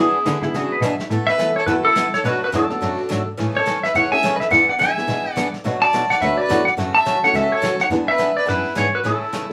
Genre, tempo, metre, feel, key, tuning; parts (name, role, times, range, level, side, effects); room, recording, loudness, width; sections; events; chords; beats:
country, western swing; 212 BPM; 4/4; swing 60% on 8ths; A major; A4 = 440 Hz
clean lap steel guitar; melody; 0.0-9.5 s; G#4 to A5; -20 LUFS; equal
clear fiddle; second line; 0.0-9.5 s; D4 to E5; -30 LUFS; equal
picked swing-style acoustic guitar; accompaniment; 0.0-9.4 s; B2 to A4; -28 LUFS; equal
warm cello; bass; 0.0-9.1 s; C#2 to D3; -26 LUFS; equal
vintage brush drum kit; drums; 0.3-9.5 s; brushed snare drum, hi-hat, snare drum; -32 LUFS; equal
pedal steel guitar; second line; 0.4-1.0 s; E4 to E5; -28 LUFS; equal
honky-tonk upright piano; accompaniment; 0.4-9.5 s; E3 to B4; -31 LUFS; equal
wet studio reverb, RT60 0.5 s; band playing live in one room; -19 LUFS; mono
0.0-1.1 A section; 1.1-9.5 B section
0.0 E7; 1.1 Asus2; 2.2 Bm7; 3.4 Amaj7; 4.5 E7; 5.6 Bm7; 6.8 F#m7; 7.9 E7
0.26 0.54 0.83 | 1.11 1.40 1.68 1.96 | 2.25 2.53 2.81 3.10 | 3.38 3.67 3.95 4.23 | 4.52 4.80 5.08 5.37 | 5.65 5.93 6.22 6.50 | 6.78 7.07 7.35 7.63 | 7.92 8.20 8.48 8.77 | 9.05 9.33